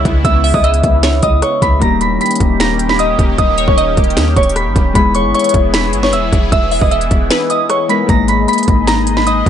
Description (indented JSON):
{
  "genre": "hip hop, trap",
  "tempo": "153 BPM",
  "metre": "4/4",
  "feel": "half-time",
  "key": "G# harmonic minor",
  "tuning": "A4 = 440 Hz",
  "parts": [
    { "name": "glassy synth bell", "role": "melody", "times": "0.0-9.4 s", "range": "C#5 to B6", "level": "-15 LUFS", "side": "right 1 dB", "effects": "chorus, phaser, low-pass filter, dub echo" },
    { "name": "Celtic harp", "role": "accompaniment", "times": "0.0-9.5 s", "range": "G3 to A#4", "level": "-20 LUFS", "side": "left 6 dB", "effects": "low-pass filter" },
    { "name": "sweeping resonant pad", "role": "sustained chords", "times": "0.0-9.5 s", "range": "C#3 to D#5", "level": "-21 LUFS", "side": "left 1 dB", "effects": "chorus" },
    { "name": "clean 808-style bass", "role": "bass", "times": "0.0-9.5 s", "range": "D#1 to D#2", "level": "-16 LUFS", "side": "equal", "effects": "none" },
    { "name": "trap drum kit", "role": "drums", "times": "0.1-9.5 s", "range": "finger snaps, hi-hat, kick drum, rim click, snare drum", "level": "-16 LUFS", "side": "equal", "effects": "none" },
    { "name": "glassy wavetable pluck", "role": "second line", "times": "0.4-8.1 s", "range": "B4 to E5", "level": "-23 LUFS", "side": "left 1 dB", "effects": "chorus, dub echo" }
  ],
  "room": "little or no reverb",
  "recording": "echo-heavy mix, nothing above 10.7 kHz",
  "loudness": "-10 LUFS",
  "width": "side -9 dB against mid",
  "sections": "0.0-8.1 A section; 8.1-9.5 A section",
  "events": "kick muted 7.3-8.1",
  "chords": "0.0 C#m7; 1.8 D#7; 5.0 Emaj7; 8.1 G#madd9"
}